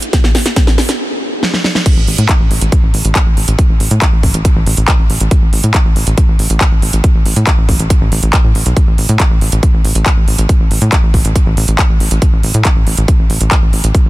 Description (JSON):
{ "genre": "uplifting trance", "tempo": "139 BPM", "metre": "4/4", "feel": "straight", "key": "unclear", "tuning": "A4 = 439 Hz", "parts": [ { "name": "big-room dance drum kit", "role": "drums", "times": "0.0-14.0 s", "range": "crash cymbal, handclaps, hi-hat, snare drum", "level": "-16 LUFS", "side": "equal", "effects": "none" }, { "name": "electronic kick drum", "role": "drums", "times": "0.1-14.0 s", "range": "none", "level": "-11 LUFS", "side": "equal", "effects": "none" }, { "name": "tight sequencer bass", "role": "bass", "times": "2.0-14.1 s", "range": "A1 to A2", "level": "-14 LUFS", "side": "equal", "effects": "tube saturation, sidechain pumping" } ], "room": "little or no reverb", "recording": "dense, heavily limited modern master", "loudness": "-9 LUFS", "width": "side -18 dB against mid", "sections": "0.0-1.9 A section; 1.9-14.1 B section", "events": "build-up 0.0-1.9; drum fill 0.0-1.0, 1.4-1.9; stop 1.0-1.9; drop 1.9-14.1", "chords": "none" }